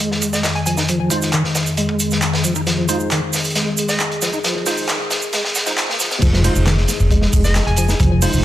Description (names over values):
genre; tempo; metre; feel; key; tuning
breakbeat, breaks; 135 BPM; 4/4; straight; F minor; A4 = 440 Hz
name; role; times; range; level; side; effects
warbly tape-like pad; sustained chords; 0.0-8.4 s; F2 to Ab4; -24 LUFS; left 2 dB; chorus, built-in reverb, vintage 12-bit sampler grit, sidechain pumping
percussive tonewheel organ; riff; 0.0-8.3 s; Eb3 to F4; -23 LUFS; equal; chorus vibrato, fast rotary speaker, low-pass filter, ping-pong delay
crunchy breakbeat drum kit; drums; 0.0-8.3 s; crash cymbal, hi-hat, kick drum, snare drum; -20 LUFS; equal; high-pass filter on kick, high-pass filter on hats, high-pass filter on cymbals, high-pass filter on snare, high-pass filter on room
punchy analog drum machine; drums; 0.0-8.4 s; handclaps, ride cymbal, shaker; -23 LUFS; right 2 dB; none
hollow square pluck; melody; 0.3-0.7, 3.9-4.0, 7.4-7.8 s; Eb5 to Ab5; -27 LUFS; left 1 dB; chorus, old record sound, ping-pong delay
tine electric piano; stabs; 1.1-8.4 s; Ab3 to C5; -26 LUFS; right 2 dB; medium stereo tremolo, ping-pong delay
upright bass; bass; 6.2-8.4 s; F1; -16 LUFS; equal; none
room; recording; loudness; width
light reverb, small room reverb; high-pass filter; -15 LUFS; side -13 dB against mid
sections
0.0-6.2 A section; 6.2-8.4 B section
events
build-up 0.0-6.2; filter sweep on tonewheel organ 0.0-6.2; filter sweep on ambient pad 0.0-6.2; filter sweep 0.0-6.2; drum fill 2.7-6.2; drop 6.2-8.4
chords
0.0 Fm7